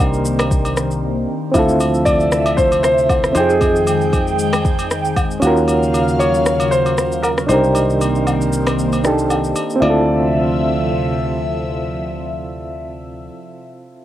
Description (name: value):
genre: amapiano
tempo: 116 BPM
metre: 4/4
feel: swing 55% on 16ths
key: D phrygian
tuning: A4 = 441 Hz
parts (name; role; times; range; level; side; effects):
- warm grand piano; melody; 0.0-13.3 s; Ab4 to D5; -20 LUFS; left 1 dB; cassette tape, analog delay
- soft electric-piano-like synth keys; accompaniment; 0.0-14.0 s; C4 to G5; -19 LUFS; right 2 dB; chorus, tremolo, cassette tape
- airy breathy pad; sustained chords; 0.0-13.3 s; C3 to G5; -22 LUFS; left 1 dB; chorus, phaser, cassette tape
- fingered electric bass; bass; 0.0-13.3 s; C2 to F2; -21 LUFS; equal; none
- afro-pop drum kit; drums; 0.1-9.8 s; kick drum, rim click, shaker; -21 LUFS; equal; none
- agogo bells and woodblock; percussion; 0.4-10.1 s; none; -27 LUFS; left 1 dB; none
room: moderate small room reverb, RT60 0.5 s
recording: home recording on cassette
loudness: -14 LUFS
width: side -12 dB against mid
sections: 0.0-9.8 A section; 9.8-14.0 B section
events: break 1.0-1.5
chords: 0.0 Cm9; 1.5 Dm9; 3.4 Fm9; 5.4 Ebm9; 7.5 Cm9; 9.8 Dm9